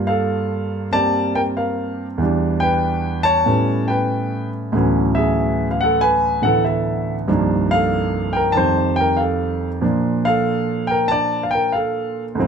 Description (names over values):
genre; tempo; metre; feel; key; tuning
solo jazz; 94 BPM; 4/4; swing 67% on 8ths; Bb major; A4 = 440 Hz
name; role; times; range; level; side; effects
warm grand piano; solo; 0.0-12.5 s; C2 to A5; -16 LUFS; equal; none
room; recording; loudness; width
light reverb; none; -17 LUFS; side -6 dB against mid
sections
0.0-12.5 A section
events
none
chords
0.0 Gm7; 2.2 Em7; 3.5 A9; 4.7 Dmaj13; 7.3 Cm11; 8.6 F9; 9.8 Bbmaj7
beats
0.28 0.91 1.55 | 2.19 2.82 3.46 4.09 | 4.73 5.37 6.00 6.64 | 7.28 7.91 8.55 9.19 | 9.82 10.46 11.10 11.73 | 12.37